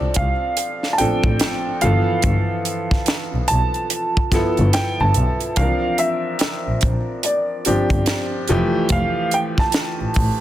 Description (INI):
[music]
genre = R&B, neo-soul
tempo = 72 BPM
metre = 4/4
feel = swing 62% on 16ths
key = unclear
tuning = A4 = 440 Hz
[part]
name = dark grand piano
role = melody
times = 0.0-10.4 s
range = D5 to A5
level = -23 LUFS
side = right 1 dB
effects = slapback echo
[part]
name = clear upright piano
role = accompaniment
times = 0.0-10.4 s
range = E3 to Bb4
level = -23 LUFS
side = equal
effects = none
[part]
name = muted double bass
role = bass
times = 0.0-10.3 s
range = F1 to C2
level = -21 LUFS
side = equal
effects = none
[part]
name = tight funk drum kit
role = drums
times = 0.1-10.4 s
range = hi-hat, kick drum, snare drum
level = -22 LUFS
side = equal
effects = none
[sound]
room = light reverb, small room ambience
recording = dense, heavily limited modern master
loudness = -17 LUFS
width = side -13 dB against mid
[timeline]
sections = 0.0-10.4 A section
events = none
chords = 0.0 Dm7; 1.8 G13 (rootless); 5.6 C9sus4; 8.5 Fmaj9